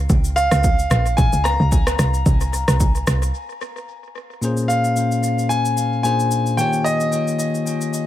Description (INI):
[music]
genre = amapiano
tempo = 111 BPM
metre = 4/4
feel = swing 55% on 16ths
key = Bb dorian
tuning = A4 = 441 Hz
[part]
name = woody log drum bass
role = bass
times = 0.0-3.3 s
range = Bb1 to Db2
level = -18 LUFS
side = equal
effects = none
[part]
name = deep house drum kit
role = drums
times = 0.1-8.1 s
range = kick drum, rim click, shaker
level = -21 LUFS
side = equal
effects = tape echo
[part]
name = clear concert grand piano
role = melody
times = 0.4-7.9 s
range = Eb5 to Bb5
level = -22 LUFS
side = left 1 dB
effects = tape echo
[part]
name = bell-like tine electric piano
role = accompaniment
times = 4.4-8.1 s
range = Bb2 to Db5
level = -20 LUFS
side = left 2 dB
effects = tape echo
[sound]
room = light reverb, digital ambience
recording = echo-heavy mix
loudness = -16 LUFS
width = side -12 dB against mid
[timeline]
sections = 0.0-4.4 A section; 4.4-8.1 B section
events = drop 0.0-4.4; break 3.3-4.4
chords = 0.0 Db6; 2.0 Bbsus2/C; 3.9 N.C.; 4.4 Bbm9; 6.0 Bb7; 6.6 Eb9